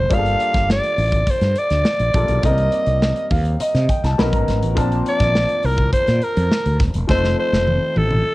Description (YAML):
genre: polished 1980s jazz-funk pop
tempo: 103 BPM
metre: 4/4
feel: straight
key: C dorian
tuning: A4 = 440 Hz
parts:
  - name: raspy alto saxophone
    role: melody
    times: 0.0-8.3 s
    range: A4 to F5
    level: -20 LUFS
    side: equal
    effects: none
  - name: clear baby grand piano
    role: accompaniment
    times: 0.0-8.3 s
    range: F3 to B5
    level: -25 LUFS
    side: left 1 dB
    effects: wide subtle chorus, cassette tape
  - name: mellow fretless electric bass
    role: bass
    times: 0.0-8.3 s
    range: Eb1 to C3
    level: -19 LUFS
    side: equal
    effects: none
  - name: modern studio drum kit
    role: drums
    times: 0.1-8.2 s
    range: hi-hat, kick drum, snare drum, toms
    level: -22 LUFS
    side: equal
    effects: cassette tape
room: light reverb, small room ambience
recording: home recording on cassette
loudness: -15 LUFS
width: side -18 dB against mid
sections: 0.0-8.3 A section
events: grand piano fill 3.0-4.8; drum fill 7.1-8.3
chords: 0.1 Gm9; 2.4 Cm7; 4.2 Bmaj9; 4.8 Bbmaj9; 7.1 F7